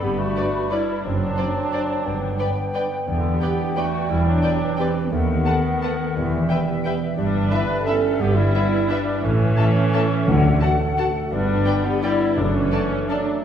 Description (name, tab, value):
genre	classical, orchestral ballroom waltz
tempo	175 BPM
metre	3/4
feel	uneven beats, rubato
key	D major from 7.2 s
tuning	A4 = 444 Hz
part	clear clarinet	second line	0.0-13.4 s	D3 to D4	-29 LUFS	left 1 dB	none
part	large flute ensemble	second line	0.0-13.2 s	D5 to B5	-30 LUFS	left 1 dB	none
part	mellow bassoon	accompaniment	0.0-13.4 s	G3 to D4	-30 LUFS	right 1 dB	none
part	muted studio viola section	accompaniment	0.0-13.4 s	B3 to B4	-26 LUFS	right 2 dB	none
part	concert harp	arpeggios	0.0-13.4 s	F#2 to D5	-26 LUFS	left 1 dB	none
part	muted studio cello section	bass	0.0-12.7 s	D#2 to D3	-27 LUFS	right 1 dB	none
part	muted studio double bass section	bass	0.0-12.7 s	E1 to D#2	-26 LUFS	right 1 dB	none
part	muted studio violin section	melody	0.4-13.2 s	D5 to A5	-35 LUFS	left 3 dB	none
part	muted studio violin section	second line	0.4-13.2 s	A4 to F#5	-33 LUFS	left 3 dB	none
part	warm French horn section	sustained chords	0.4-13.4 s	A3 to C5	-30 LUFS	left 2 dB	none
part	timpani	percussion	10.3-10.8 s	D3	-24 LUFS	left 2 dB	none
room	wet recital hall reverb, RT60 1.6 s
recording	heard from further back in the room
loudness	-18 LUFS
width	side -9 dB against mid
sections	0.0-13.4 A section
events	none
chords	0.0 G; 1.0 D7/F#; 2.1 G; 3.1 Em7; 5.1 B7/D#; 6.2 Em; 7.2 Em7/G; 9.2 A; 10.3 D; 11.3 G; 12.4 D/F#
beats	| 0.02 0.36 0.71 | 1.05 1.38 1.73 | 2.06 2.40 2.75 | 3.08 3.42 3.77 | 4.10 4.43 4.79 | 5.12 5.46 5.82 | 6.16 6.50 6.85 | 7.18 7.51 7.87 | 8.20 8.54 8.90 | 9.24 9.58 9.94 | 10.27 10.62 10.98 | 11.32 11.66 12.03 | 12.37 12.72 13.09